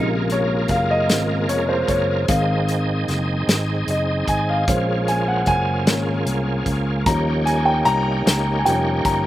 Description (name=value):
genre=slow gospel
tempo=50 BPM (dotted quarters)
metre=6/8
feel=straight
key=unclear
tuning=A4 = 440 Hz
part: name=warm concert grand piano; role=accompaniment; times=0.0-9.3 s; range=C3 to Bb5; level=-21 LUFS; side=left 1 dB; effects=none
part: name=bright tonewheel organ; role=sustained chords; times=0.0-9.3 s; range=Bb3 to Eb5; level=-25 LUFS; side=right 2 dB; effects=fast rotary speaker, overdrive, chorus vibrato
part: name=fingered electric bass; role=bass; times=0.0-9.3 s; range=F1 to Eb2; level=-23 LUFS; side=equal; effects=none
part: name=natural country drum kit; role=drums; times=0.3-9.2 s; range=hi-hat, kick drum, snare drum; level=-22 LUFS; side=equal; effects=none
room=little or no reverb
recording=recorded outdoors, with no room sound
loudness=-17 LUFS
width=side -14 dB against mid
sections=0.0-9.3 A section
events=grand piano solo 0.0-9.3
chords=0.0 Bbm7; 2.3 Ab; 4.7 Bbm7; 7.1 Eb7